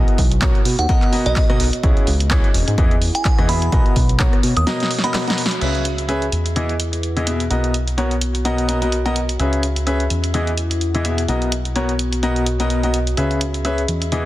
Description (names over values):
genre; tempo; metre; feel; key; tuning
piano house; 127 BPM; 4/4; swing 56% on 16ths; B major; A4 = 441 Hz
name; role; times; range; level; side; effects
clear baby grand piano; riff; 0.0-14.3 s; B2 to E5; -22 LUFS; left 1 dB; sidechain pumping, digital delay
fat analog bass; bass; 0.0-14.3 s; E1 to B2; -20 LUFS; equal; sidechain pumping
warbly tape-like pad; texture; 0.0-14.3 s; B3 to F#5; -29 LUFS; equal; chorus, built-in reverb, sidechain pumping
punchy analog drum machine; drums; 0.1-14.2 s; crash cymbal, handclaps, hi-hat, rim click, snare drum; -24 LUFS; right 1 dB; none
electronic kick drum; drums; 0.2-4.3 s; none; -16 LUFS; equal; none
glassy synth bell; melody; 0.8-5.2 s; D#5 to D#6; -26 LUFS; right 2 dB; chorus, tremolo, digital delay
room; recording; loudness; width
light reverb; dense, heavily limited modern master; -16 LUFS; side -16 dB against mid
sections
0.0-5.6 A section; 5.6-14.3 B section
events
break 4.7-5.6; drum fill 4.7-5.6; band accent 5.5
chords
0.0 Bmaj7; 1.8 C#m7; 2.5 Emaj7; 3.7 Bmaj7; 5.6 C#m7; 6.3 Emaj7; 7.5 Bmaj7; 9.4 C#m7; 10.1 Emaj7; 11.3 Bmaj7; 13.2 C#m7